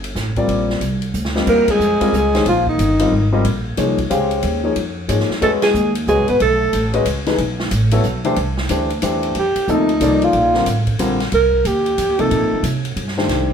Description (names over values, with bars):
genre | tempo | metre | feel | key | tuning
modal jazz | 183 BPM | 3/4 | swing 64% on 8ths | F mixolydian from 9.4 s | A4 = 439 Hz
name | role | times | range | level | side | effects
upright bass | bass | 0.0-13.5 s | G1 to C3 | -21 LUFS | right 1 dB | none
swinging big-band drum kit | drums | 0.0-13.5 s | crash cymbal, hi-hat, kick drum, ride cymbal, snare drum | -26 LUFS | equal | none
warm grand piano | accompaniment | 0.4-13.5 s | C3 to F5 | -19 LUFS | left 3 dB | none
breathy alto saxophone | melody | 1.5-3.3, 5.4-6.9, 9.4-12.6 s | Eb4 to B4 | -16 LUFS | right 2 dB | none
warm trombone | second line | 1.5-3.3, 5.4-6.9 s | Eb3 to B3 | -22 LUFS | left 3 dB | none
room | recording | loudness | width
wet studio reverb, RT60 0.8 s | heard from further back in the room | -15 LUFS | side -7 dB against mid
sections
0.0-1.5 A section; 1.5-9.4 B section; 9.4-13.5 C section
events
drum fill 1.1-1.5; band accent 1.6, 5.6; alto saxophone solo 9.4-13.5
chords
0.0 Fsus4; 1.5 Eb13sus4; 5.4 B13sus4; 8.4 Cadd9; 9.4 F9sus4